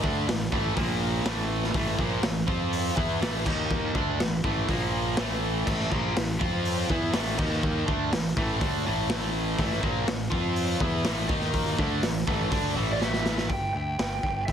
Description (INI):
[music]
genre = hard rock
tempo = 122 BPM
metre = 4/4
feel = straight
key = unclear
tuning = A4 = 439 Hz
[part]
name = distorted electric guitar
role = riff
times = 0.0-13.5 s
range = A2 to F4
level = -28 LUFS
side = equal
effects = overdrive
[part]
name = fuzz fingered electric bass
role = bass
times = 0.0-14.5 s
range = G1 to F2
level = -31 LUFS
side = equal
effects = overdrive
[part]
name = raw garage drum kit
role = drums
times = 0.0-14.5 s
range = crash cymbal, hi-hat, kick drum, snare drum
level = -29 LUFS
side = equal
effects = none
[part]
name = lead guitar through a small cranked amp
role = melody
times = 12.9-14.5 s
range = D5 to G5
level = -30 LUFS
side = right 2 dB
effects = overdrive
[sound]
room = light reverb, small room ambience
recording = heavily compressed radio sound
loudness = -24 LUFS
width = side -8 dB against mid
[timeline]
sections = 0.0-13.5 A section; 13.5-14.5 B section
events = drum fill 13.0-13.5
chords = 0.0 A5; 0.8 Bb5; 1.3 A5; 2.5 F5; 3.0 A5; 3.5 D#5; 4.0 A5; 4.7 Bb5; 5.2 A5; 6.4 F5; 6.9 A5; 7.4 D#5; 7.9 A5; 10.3 F5; 10.8 A5; 11.3 D#5; 11.8 A5; 13.5 G5